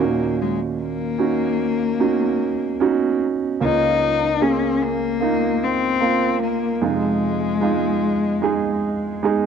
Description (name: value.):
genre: pop.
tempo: 75 BPM.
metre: 4/4.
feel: straight.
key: Bb minor.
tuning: A4 = 438 Hz.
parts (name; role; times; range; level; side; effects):
warm cello; melody; 0.0-9.3 s; Ab3 to Eb4; -22 LUFS; left 9 dB; cassette tape.
warm grand piano; accompaniment; 0.0-9.5 s; Db2 to Ab4; -20 LUFS; right 7 dB; none.
room: moderate small room reverb, RT60 0.5 s.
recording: home recording on cassette.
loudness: -18 LUFS.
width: side -7 dB against mid.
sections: 0.0-9.5 A section.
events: none.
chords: 0.0 Ebm7; 3.6 Bbm/Db; 6.8 Fm7.